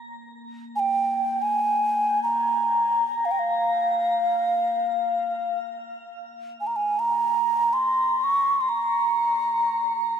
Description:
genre	world meditative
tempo	free time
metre	none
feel	none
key	Bb dorian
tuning	A4 = 440 Hz
part	breathy mellow alto ocarina	melody	0.8-10.2 s	F5 to Db6	-21 LUFS	equal	shimmer reverb, ping-pong delay
room	wet huge ambient reverb, RT60 4.8 s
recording	none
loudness	-21 LUFS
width	side -8 dB against mid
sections	0.0-10.2 A section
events	none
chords	none

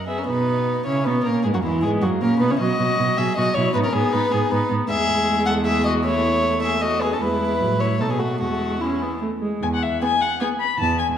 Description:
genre	quick classical-period movement for string quartet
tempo	155 BPM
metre	3/4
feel	rubato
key	B major, E major from 4.9 s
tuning	A4 = 441 Hz
part	warm violin	second line	0.0-10.5 s	E4 to F#5	-23 LUFS	left 1 dB	none
part	dark cello	bass	0.0-11.1 s	E2 to C#3	-25 LUFS	right 2 dB	none
part	dark violin	melody	0.1-11.1 s	G#3 to B5	-25 LUFS	left 5 dB	none
part	warm viola	accompaniment	0.1-10.5 s	E3 to E5	-24 LUFS	right 2 dB	none
room	wet recital hall reverb, RT60 1.4 s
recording	dark, warm production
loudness	-18 LUFS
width	side -9 dB against mid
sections	0.3-9.6 A section; 9.6-11.2 B section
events	none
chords	0.3 B; 1.4 F#7; 2.6 B; 3.8 G#m; 4.9 E; 6.1 A/E; 7.2 E; 7.6 F#m/A; 8.0 B5; 8.4 E

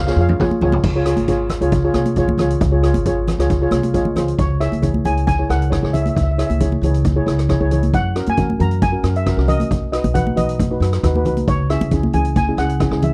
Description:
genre	calypso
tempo	135 BPM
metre	4/4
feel	straight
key	unclear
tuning	A4 = 440 Hz
part	steel pan	melody	0.0-0.3, 4.4-13.1 s	C#5 to A#5	-26 LUFS	equal	none
part	upright bass	bass	0.0-13.1 s	Ab1 to F#2	-21 LUFS	equal	none
part	steel pan	accompaniment	0.1-13.1 s	C#4 to F5	-23 LUFS	equal	none
part	street-band drum kit	drums	0.1-13.1 s	crash cymbal, hi-hat, kick drum, rim click, snare drum, toms	-24 LUFS	equal	none
part	congas	percussion	0.3-13.1 s	none	-25 LUFS	equal	none
room	light reverb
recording	dry, close 1970s-style studio recording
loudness	-17 LUFS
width	mono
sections	0.8-4.4 A section; 4.4-13.1 B section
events	drum fill 0.0-0.8; steel pan fill 3.5-4.4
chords	0.0 Db; 4.4 C#m; 7.9 F#; 9.7 B; 11.5 C#m

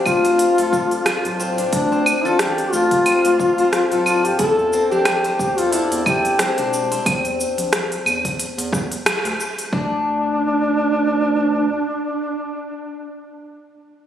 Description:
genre	organic downtempo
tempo	90 BPM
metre	4/4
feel	swing 56% on 16ths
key	unclear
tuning	A4 = 440 Hz
part	mellow duduk	melody	0.0-13.2 s	D4 to A4	-18 LUFS	left 1 dB	tape echo
part	steel-string zither	arpeggios	0.0-12.5 s	C4 to A4	-24 LUFS	left 3 dB	tape echo
part	round analog bass	bass	0.1-11.7 s	D1 to E2	-28 LUFS	equal	sidechain pumping
part	electronic kick drum	drums	0.1-9.9 s	none	-26 LUFS	right 1 dB	overdrive
part	organic electronic drum kit	drums	0.1-9.7 s	claves, hi-hat, rim click, shaker	-21 LUFS	right 1 dB	overdrive
part	udu	percussion	0.7-6.2 s	none	-45 LUFS	right 4 dB	none
room	moderate concert hall reverb, RT60 2.1 s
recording	recorded on a phone in the room, studio reverb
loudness	-16 LUFS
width	side -10 dB against mid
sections	0.0-9.7 A section; 9.7-12.4 B section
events	band accent 9.1-9.4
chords	0.0 Dm7; 4.4 Em7b5; 9.7 N.C.

